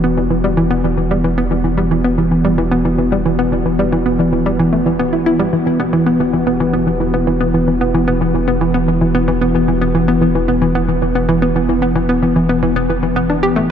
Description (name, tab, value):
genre	ambient, sequencer-driven space music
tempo	112 BPM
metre	4/4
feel	straight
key	E minor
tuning	A4 = 442 Hz
part	sweeping resonant pad	sustained chords	0.0-13.7 s	E3 to G4	-17 LUFS	left 1 dB	wide subtle chorus
part	hollow square pluck	riff	0.0-13.7 s	E3 to G4	-16 LUFS	equal	chorus, ping-pong delay
part	warm sub bass	bass	0.0-13.7 s	E1	-22 LUFS	equal	none
room	wet huge ambient reverb, RT60 8.7 s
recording	dark, warm production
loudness	-12 LUFS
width	side -8 dB against mid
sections	0.0-13.7 A section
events	none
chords	0.0 Em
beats	0.17 0.71 | 1.25 1.78 2.32 2.85 | 3.39 3.92 4.46 5.00 | 5.53 6.07 6.60 7.14 | 7.67 8.21 8.74 9.28 | 9.82 10.35 10.89 11.42 | 11.96 12.49 13.03 13.57